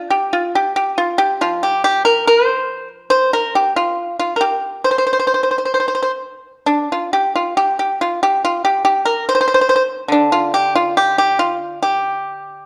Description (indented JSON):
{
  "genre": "chinese traditional, Chinese solo plucked strings",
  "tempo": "64-73 BPM",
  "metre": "2/4",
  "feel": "rubato",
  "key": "G yu mode",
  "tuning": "A4 = 439 Hz",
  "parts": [
    { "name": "pipa", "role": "solo", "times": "0.0-12.7 s", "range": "D3 to C5", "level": "-17 LUFS", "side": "equal", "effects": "none" }
  ],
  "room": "moderate recital hall reverb, RT60 1.3 s",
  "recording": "dark, warm production",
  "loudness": "-17 LUFS",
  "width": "mono",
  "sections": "0.0-12.7 A section",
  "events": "none",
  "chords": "none"
}